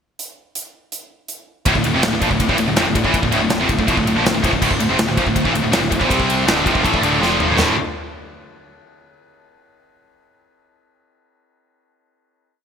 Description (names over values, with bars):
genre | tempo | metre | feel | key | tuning
heavy metal | 162 BPM | 4/4 | straight | D minor | A4 = 440 Hz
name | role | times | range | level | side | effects
big rock drum kit | drums | 0.2-7.7 s | crash cymbal, hi-hat, kick drum, ride cymbal, snare drum, toms | -21 LUFS | equal | none
brassy analog pad | sustained chords | 1.7-7.8 s | C3 to D5 | -30 LUFS | equal | none
heavy high-gain guitar | riff | 1.7-7.7 s | D2 to C4 | -20 LUFS | left 9 dB | distortion
heavy high-gain guitar | riff | 1.7-7.7 s | D2 to C4 | -23 LUFS | right 1 dB | distortion
high-gain distorted guitar | riff | 1.7-7.7 s | D2 to C4 | -21 LUFS | right 8 dB | distortion
fuzz picked electric bass | bass | 1.7-7.8 s | D1 to C2 | -25 LUFS | equal | overdrive
room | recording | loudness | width
moderate plate reverb, RT60 2.1 s | bright 1980s-style digital production | -14 LUFS | side -7 dB against mid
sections
0.2-1.7 pickup bar; 1.7-7.6 riff; 7.6-9.1 final chord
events
drum fill 7.2-7.6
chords
0.2 N.C.; 1.7 Dm; 6.1 C5; 6.5 Dm; 7.6 D5